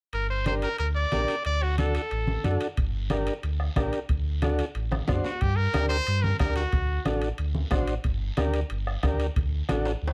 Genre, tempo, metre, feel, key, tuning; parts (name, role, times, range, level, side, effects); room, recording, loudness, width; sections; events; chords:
latin, cumbia; 182 BPM; 4/4; straight; G harmonic minor; A4 = 437 Hz
brilliant trumpet; melody; 0.1-2.6, 5.3-7.0 s; F#4 to D5; -32 LUFS; equal; plate reverb
sub bass with octave; bass; 0.1-10.1 s; G1 to G2; -30 LUFS; equal
guiro; percussion; 0.1-10.1 s; -48 LUFS; equal
timbales; percussion; 0.1-10.1 s; -42 LUFS; equal
combo organ; accompaniment; 0.5-9.9 s; D4 to C5; -33 LUFS; equal
congas; percussion; 0.5-9.9 s; -34 LUFS; equal
bombo; percussion; 2.8-9.9 s; -31 LUFS; equal
light reverb; dark, warm production; -27 LUFS; mono
0.1-5.4 A section; 5.4-10.1 B section
drum fill 4.9-5.4, 9.9
0.1 Gm; 1.5 D; 2.8 Gm; 4.1 D7; 5.4 Gm; 6.7 D7; 8.0 Gm; 9.4 D